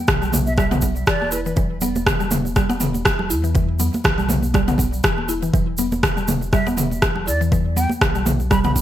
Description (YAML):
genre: afro house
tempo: 121 BPM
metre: 4/4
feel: swing 55% on 16ths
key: E minor pentatonic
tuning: A4 = 437 Hz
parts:
  - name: mallet-like synth pluck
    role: arpeggios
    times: 0.1-8.8 s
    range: E3 to E4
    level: -25 LUFS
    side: right 1 dB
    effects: chorus, phaser, sidechain pumping, digital delay
  - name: warm sub bass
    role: bass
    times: 0.1-8.8 s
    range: E1 to E2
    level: -25 LUFS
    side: equal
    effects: tube saturation, sidechain pumping
  - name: deep house drum kit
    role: drums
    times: 0.1-8.7 s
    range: rim click, toms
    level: -21 LUFS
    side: equal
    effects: gated reverb
  - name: electronic kick drum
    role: drums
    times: 0.1-8.8 s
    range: none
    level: -20 LUFS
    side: equal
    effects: none
  - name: egg shaker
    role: percussion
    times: 0.1-8.8 s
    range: none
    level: -30 LUFS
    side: right 2 dB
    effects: none
  - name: congas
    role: percussion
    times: 0.3-8.8 s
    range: none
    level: -27 LUFS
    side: right 2 dB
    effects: none
  - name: breathy mellow silver concert flute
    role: melody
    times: 0.5-1.5, 6.5-8.7 s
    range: B4 to B5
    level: -27 LUFS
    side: right 1 dB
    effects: digital delay
room: light reverb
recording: bright 1980s-style digital production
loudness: -17 LUFS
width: side -12 dB against mid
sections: 0.0-8.8 A section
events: none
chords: 0.0 E5